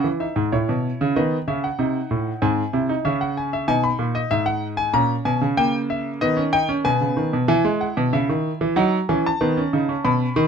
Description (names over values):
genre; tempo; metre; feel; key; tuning
classical, baroque-style 3-part fugue for grand piano; 94 BPM; 3/4; straight; C# minor; A4 = 445 Hz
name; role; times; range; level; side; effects
clear grand piano; solo; 0.0-10.5 s; G#2 to B5; -19 LUFS; equal; none
room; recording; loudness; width
light reverb; close, detailed microphones; -19 LUFS; side -6 dB against mid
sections
0.0-7.5 A section; 7.5-10.5 B section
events
none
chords
0.0 C#m; 1.2 C#m11; 1.8 G#7; 3.1 C#m; 3.7 G#m; 5.0 A#m7; 5.6 D#7/C#; 6.9 G#m/B; 7.5 E; 8.8 F#m7; 9.4 B7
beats
0.52 1.16 | 1.79 2.42 3.06 | 3.69 4.32 4.95 | 5.59 6.22 6.86 | 7.50 8.15 8.79 | 9.43 10.06